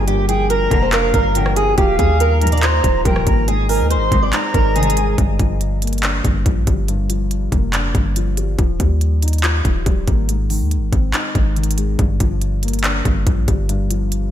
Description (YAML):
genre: hip hop, trap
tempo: 141 BPM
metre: 4/4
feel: half-time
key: G phrygian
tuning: A4 = 438 Hz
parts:
  - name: fingerpicked acoustic archtop guitar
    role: melody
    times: 0.0-5.2 s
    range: G4 to D5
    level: -19 LUFS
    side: right 2 dB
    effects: analog chorus, low-pass filter
  - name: silver concert flute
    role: second line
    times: 0.0-5.2 s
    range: F5 to C6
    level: -24 LUFS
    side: right 2 dB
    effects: analog delay
  - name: dark concert grand piano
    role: accompaniment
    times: 0.0-14.3 s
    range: G2 to F4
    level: -24 LUFS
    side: left 5 dB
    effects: low-pass filter
  - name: glass harmonica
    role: sustained chords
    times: 0.0-5.2 s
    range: Ab3 to Eb5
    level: -30 LUFS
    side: equal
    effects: stereo widening
  - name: warm 808-style bass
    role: bass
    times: 0.0-14.3 s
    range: Eb1 to Eb2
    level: -18 LUFS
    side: equal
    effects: none
  - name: trap drum kit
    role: drums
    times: 0.1-14.2 s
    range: handclaps, hi-hat, kick drum, rim click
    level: -19 LUFS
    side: equal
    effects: none
  - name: dark symphonic string section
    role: stabs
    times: 0.7-5.1 s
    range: Bb1 to F3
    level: -27 LUFS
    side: equal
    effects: none
room: light reverb, small room ambience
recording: none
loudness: -14 LUFS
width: side -11 dB against mid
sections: 0.0-5.2 A section; 5.2-14.3 B section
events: none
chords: 0.0 Gm7; 1.8 Ebadd9; 3.5 Ab; 5.2 Gm7; 8.6 Ebadd9; 10.3 Ab; 12.0 Gm7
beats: | 0.07 0.50 0.93 1.35 | 1.78 2.20 2.63 3.05 | 3.48 3.90 4.33 4.76 | 5.18 5.61 6.03 6.46 | 6.88 7.31 7.74 8.16 | 8.59 9.01 9.44 9.86 | 10.29 10.71 11.14 11.56 | 11.99 12.42 12.84 13.27 | 13.69 14.12